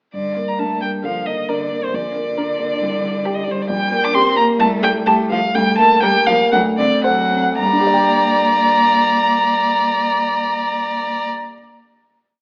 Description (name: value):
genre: quick classical-period movement for piano quartet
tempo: 109-137 BPM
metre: 4/4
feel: rubato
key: G minor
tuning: A4 = 442 Hz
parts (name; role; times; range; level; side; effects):
- rich violin; melody; 0.1-11.3 s; C5 to D6; -19 LUFS; equal; none
- rich cello; second line; 0.1-11.3 s; C3 to D4; -28 LUFS; equal; none
- dark grand piano; accompaniment; 0.1-11.6 s; Bb1 to G5; -23 LUFS; equal; none
- warm violin; second line; 0.6-11.3 s; G4 to D5; -26 LUFS; equal; none
room: moderate recital hall reverb, RT60 1.4 s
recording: AM radio sound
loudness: -17 LUFS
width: mono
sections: 0.1-7.6 A section; 7.6-11.8 final chord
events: slowing down 2.8-7.6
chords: 0.1 Gm; 1.9 Bb; 2.8 C5; 3.7 Gm/Bb; 4.6 Fadd9/C; 5.5 Gm/D; 6.5 D7; 7.6 Gm